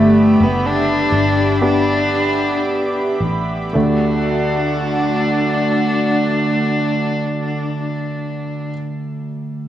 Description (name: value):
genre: pop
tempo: 53-64 BPM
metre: 4/4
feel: straight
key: D major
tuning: A4 = 441 Hz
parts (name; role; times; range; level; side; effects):
- warm cello; melody; 0.0-8.7 s; A3 to D4; -18 LUFS; left 1 dB; none
- warm concert grand piano; accompaniment; 0.0-9.7 s; D2 to G4; -21 LUFS; right 2 dB; none
- airy breathy pad; sustained chords; 0.0-8.7 s; A3 to D6; -22 LUFS; right 1 dB; chorus
- fingered electric bass; bass; 0.0-8.7 s; F#1 to D2; -21 LUFS; left 1 dB; none
room: moderate concert hall reverb, RT60 2.0 s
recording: worn, warbling old tape, cassette tape, warbly pitch drift, studio reverb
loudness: -15 LUFS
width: side -11 dB against mid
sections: 0.0-3.8 A section; 3.8-8.2 B section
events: slowing down 0.0-3.8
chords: 0.0 G; 3.8 D